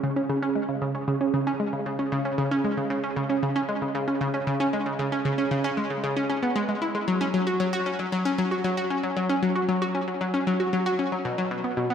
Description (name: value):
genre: ambient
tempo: 115 BPM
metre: 4/4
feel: straight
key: unclear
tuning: A4 = 440 Hz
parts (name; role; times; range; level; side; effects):
- analog pluck; solo; 0.0-11.9 s; B2 to F#4; -24 LUFS; equal; chorus, tape echo
room: wet plate reverb, RT60 2.7 s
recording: echo-heavy mix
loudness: -24 LUFS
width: side -8 dB against mid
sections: 0.0-11.9 A section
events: none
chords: none